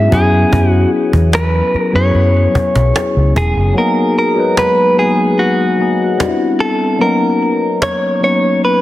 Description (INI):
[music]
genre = contemporary R&B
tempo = 74 BPM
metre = 4/4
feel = straight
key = G# minor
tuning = A4 = 438 Hz
[part]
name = direct-recorded clean electric guitar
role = melody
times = 0.0-8.8 s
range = F#4 to E5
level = -15 LUFS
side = equal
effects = spring reverb, ping-pong delay
[part]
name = tine electric piano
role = accompaniment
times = 0.0-8.8 s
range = F#3 to B4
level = -15 LUFS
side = left 2 dB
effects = phaser
[part]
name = vintage muted fingered electric bass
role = bass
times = 0.0-3.7 s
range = F#1 to F#2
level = -13 LUFS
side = equal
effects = none
[part]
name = cajon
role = drums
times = 0.1-8.0 s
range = none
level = -19 LUFS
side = equal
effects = none
[sound]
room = light reverb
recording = dense, heavily limited modern master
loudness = -11 LUFS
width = side -15 dB against mid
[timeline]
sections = 0.0-3.8 A section; 3.8-8.8 B section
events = kick muted 3.8-8.8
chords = 0.0 E6; 3.8 G#m9; 6.2 Cmaj9; 7.0 Bmaj9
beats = | 0.52 1.33 2.15 2.96 | 3.77 4.58 5.39 6.20 | 7.01 7.82 8.63